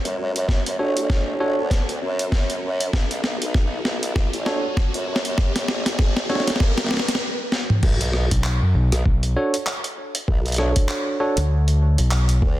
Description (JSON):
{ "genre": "glitch hop", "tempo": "98 BPM", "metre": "4/4", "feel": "swing 58% on 16ths", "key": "B minor", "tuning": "A4 = 438 Hz", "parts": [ { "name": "formant-sweep wobble bass", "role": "bass", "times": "0.0-12.6 s", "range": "A1 to F#2", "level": "-25 LUFS", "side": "equal", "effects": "chorus, high-pass filter" }, { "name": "riser", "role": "sound effects", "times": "0.0-7.2 s", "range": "none", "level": "-32 LUFS", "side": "left 1 dB", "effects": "none" }, { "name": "boom bap sampler-style drum kit", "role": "drums", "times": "0.1-12.4 s", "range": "crash cymbal, handclaps, hi-hat, rim click, snare drum, toms", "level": "-25 LUFS", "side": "equal", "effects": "none" }, { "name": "electronic kick drum", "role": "drums", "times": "0.5-12.6 s", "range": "none", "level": "-20 LUFS", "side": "equal", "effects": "none" }, { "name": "bright tine electric piano", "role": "stabs", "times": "0.8-11.4 s", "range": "D4 to C#5", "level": "-26 LUFS", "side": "right 1 dB", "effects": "vintage 12-bit sampler grit, sidechain pumping, tape echo" }, { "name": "growling fingered electric bass", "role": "bass", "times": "8.3-12.4 s", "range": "B1 to F#2", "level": "-18 LUFS", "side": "equal", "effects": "overdrive" } ], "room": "light reverb, digital ambience", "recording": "dense, heavily limited modern master", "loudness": "-19 LUFS", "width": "side -15 dB against mid", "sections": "0.0-7.8 A section; 7.8-12.6 B section", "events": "build-up 0.0-7.8; drum fill 0.0-7.2, 7.4-7.8; riser 0.0-7.2; stop 7.2-7.8; drop 7.8-12.6", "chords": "0.0 Bm7" }